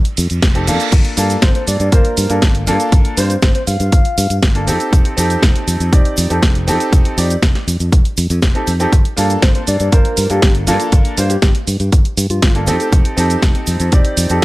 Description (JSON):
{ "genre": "nu-disco, nu disco", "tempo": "120 BPM", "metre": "4/4", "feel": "straight", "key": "G minor", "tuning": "A4 = 438 Hz", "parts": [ { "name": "reverse cymbal", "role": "sound effects", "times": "0.2-0.9 s", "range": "none", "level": "-25 LUFS", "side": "right 8 dB", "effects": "none" }, { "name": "house drum kit", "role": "drums", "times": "0.1-14.4 s", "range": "crash cymbal, hi-hat, shaker, snare drum", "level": "-20 LUFS", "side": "right 1 dB", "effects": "none" }, { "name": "fingered electric bass", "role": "bass", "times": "0.2-14.4 s", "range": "F1 to G2", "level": "-17 LUFS", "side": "equal", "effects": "none" }, { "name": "tube shaker", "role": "percussion", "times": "0.2-14.4 s", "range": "none", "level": "-29 LUFS", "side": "left 2 dB", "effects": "none" }, { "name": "electronic kick drum", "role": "drums", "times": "0.4-14.4 s", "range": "none", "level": "-12 LUFS", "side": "equal", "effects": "none" }, { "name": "clear baby grand piano", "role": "accompaniment", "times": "0.5-14.4 s", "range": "Bb3 to D5", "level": "-19 LUFS", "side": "equal", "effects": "sidechain pumping, analog delay" }, { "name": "soft octave-layered synth lead", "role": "melody", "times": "1.4-4.4, 9.4-12.9 s", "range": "F4 to F5", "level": "-22 LUFS", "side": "left 1 dB", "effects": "chorus, cassette tape, analog delay" } ], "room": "digital ambience", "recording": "none", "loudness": "-11 LUFS", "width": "side -19 dB against mid", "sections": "0.0-14.4 A section", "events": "reverse cymbal 0.2-0.9", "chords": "0.0 F; 0.9 Gm7; 4.7 F7; 8.9 Gm7; 12.7 F7" }